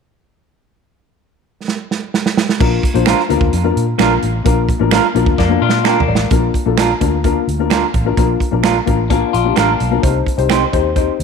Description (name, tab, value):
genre	uptempo 1960s-style soul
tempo	129 BPM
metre	4/4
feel	straight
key	Bb major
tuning	A4 = 440 Hz
part	natural country drum kit	drums	1.7-11.2 s	crash cymbal, hi-hat, kick drum, snare drum, toms	-17 LUFS	right 3 dB	none
part	dark upright piano	accompaniment	2.6-11.2 s	Bb3 to Bb5	-18 LUFS	left 12 dB	none
part	vintage muted fingered electric bass	bass	2.6-11.2 s	A1 to Bb2	-18 LUFS	equal	none
part	electric guitar through a small old amp	stabs	3.1-10.6 s	Bb3 to C5	-20 LUFS	right 11 dB	tape echo
part	finger snap	percussion	3.1-10.6 s	none	-26 LUFS	right 9 dB	none
part	electric guitar through a small old amp	riff	5.4-6.3, 9.1-10.0 s	Bb3 to F4	-19 LUFS	left 12 dB	phaser
room	light reverb, studio ambience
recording	1960s-style stereo with parts hard left and right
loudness	-12 LUFS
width	side -6 dB against mid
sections	0.8-2.6 A section; 2.6-6.3 B section; 6.3-11.2 C section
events	drum fill 1.7-2.6, 5.4-6.3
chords	0.8 N.C.; 2.6 Bb; 10.0 Cm